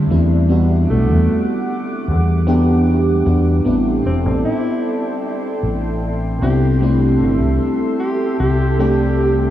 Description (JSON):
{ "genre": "vaporwave", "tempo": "76 BPM", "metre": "4/4", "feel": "straight", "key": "A dorian", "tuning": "A4 = 441 Hz", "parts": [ { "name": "mellow FM electric piano", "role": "accompaniment", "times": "0.0-9.5 s", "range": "G3 to G4", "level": "-18 LUFS", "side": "equal", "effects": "lush chorus, diffuse ambient delay" }, { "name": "lush unison pad", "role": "sustained chords", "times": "0.0-9.5 s", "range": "G3 to D6", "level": "-25 LUFS", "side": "right 1 dB", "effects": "chorus" }, { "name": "deep dub fingered electric bass", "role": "bass", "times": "0.0-9.5 s", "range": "E1 to E2", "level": "-16 LUFS", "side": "equal", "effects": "none" }, { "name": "mellow alto saxophone", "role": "melody", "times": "0.9-9.4 s", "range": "A3 to G4", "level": "-24 LUFS", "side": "right 1 dB", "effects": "tape echo" } ], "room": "wet huge ambient reverb, RT60 8.2 s", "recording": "dreamy mix soaked in reverb, cassette tape, small room reverb", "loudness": "-14 LUFS", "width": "side -12 dB against mid", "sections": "0.0-9.5 A section", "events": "none", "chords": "0.0 D9sus4; 0.5 Em9; 3.7 Am11; 6.8 C6" }